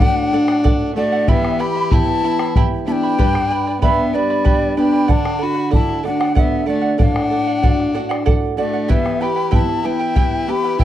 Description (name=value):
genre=andean folk, Andean ensemble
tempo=63 BPM (dotted quarters)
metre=6/8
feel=straight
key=unclear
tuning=A4 = 440 Hz
part: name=breathy large quena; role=melody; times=0.0-10.8 s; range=D5 to B5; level=-22 LUFS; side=left 2 dB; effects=slapback echo
part: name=warm violin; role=second line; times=0.0-10.8 s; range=G3 to G4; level=-22 LUFS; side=left 5 dB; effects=none
part: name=charango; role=accompaniment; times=0.0-10.8 s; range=E4 to B5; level=-24 LUFS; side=right 8 dB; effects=none
part: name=nylon-string guitar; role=accompaniment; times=0.0-10.8 s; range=G2 to G4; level=-22 LUFS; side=right 2 dB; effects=none
part: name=bombo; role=percussion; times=0.0-10.8 s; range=none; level=-17 LUFS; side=equal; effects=none
room=small room reverb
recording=dry, close 1970s-style studio recording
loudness=-14 LUFS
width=side -12 dB against mid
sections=0.0-10.8 A section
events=none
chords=0.0 D; 1.3 Em; 3.2 G; 5.1 D; 8.9 Em